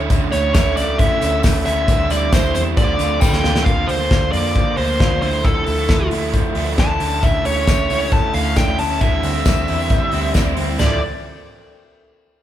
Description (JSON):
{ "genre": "jangly indie pop", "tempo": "135 BPM", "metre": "4/4", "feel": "straight", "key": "D minor", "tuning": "A4 = 441 Hz", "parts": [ { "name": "crunchy overdriven guitar", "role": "accompaniment", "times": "0.0-11.0 s", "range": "D3 to F4", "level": "-24 LUFS", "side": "right 5 dB", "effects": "none" }, { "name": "electric guitar through a small old amp", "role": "arpeggios", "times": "0.0-11.0 s", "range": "D3 to F4", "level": "-25 LUFS", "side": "left 1 dB", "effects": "spring reverb" }, { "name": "vintage muted picked electric bass", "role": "bass", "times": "0.0-11.0 s", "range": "C#2 to F2", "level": "-23 LUFS", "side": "equal", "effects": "none" }, { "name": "loose indie drum kit", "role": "drums", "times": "0.1-10.9 s", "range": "hi-hat, kick drum, snare drum, splash cymbal, toms", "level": "-18 LUFS", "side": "equal", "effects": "none" }, { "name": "tambourine", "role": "percussion", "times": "0.1-3.3, 7.2-11.0 s", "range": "none", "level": "-37 LUFS", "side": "left 6 dB", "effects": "none" }, { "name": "bluesy overdriven lead guitar", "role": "melody", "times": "0.3-11.0 s", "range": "A4 to A5", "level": "-21 LUFS", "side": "equal", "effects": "distortion" } ], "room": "moderate large studio reverb, RT60 1.5 s", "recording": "band playing live in one room", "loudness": "-15 LUFS", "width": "side -11 dB against mid", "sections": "0.0-3.7 A section; 3.7-10.8 B section; 10.8-12.4 C section", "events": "drum fill 3.2-3.7", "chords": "0.0 A; 1.9 C/D; 2.8 Dm7; 3.7 Bb/D; 5.2 Dmadd9; 7.0 A; 9.0 C/D; 10.8 Dmadd9" }